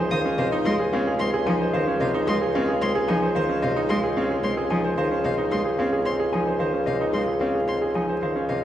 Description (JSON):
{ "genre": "classical, minimalist pattern music", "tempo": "111 BPM", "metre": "3/4", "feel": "straight", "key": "Db major", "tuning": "A4 = 440 Hz", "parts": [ { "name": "clear grand piano", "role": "arpeggios", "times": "0.0-8.6 s", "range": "C4 to C5", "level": "-27 LUFS", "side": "right 2 dB", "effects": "none" }, { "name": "warm bassoon", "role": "bass", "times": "0.0-8.6 s", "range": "Db2", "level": "-25 LUFS", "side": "equal", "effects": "none" }, { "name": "mellow electric guitar", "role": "melody", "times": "0.1-8.6 s", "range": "Ab4 to Ab5", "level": "-30 LUFS", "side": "left 2 dB", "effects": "none" }, { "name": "rich cello", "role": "accompaniment", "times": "0.1-8.6 s", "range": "C3 to C4", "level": "-28 LUFS", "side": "equal", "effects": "none" }, { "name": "rich violin", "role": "arpeggios", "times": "0.1-8.6 s", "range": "F5 to Eb6", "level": "-34 LUFS", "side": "left 2 dB", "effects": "none" } ], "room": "wet church reverb, RT60 3.5 s", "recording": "recorded in a church or concert hall, vinyl crackle, nothing above 10.7 kHz", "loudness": "-21 LUFS", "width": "side -11 dB against mid", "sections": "0.0-8.6 A section", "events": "none", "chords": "0.0 Dbmaj7" }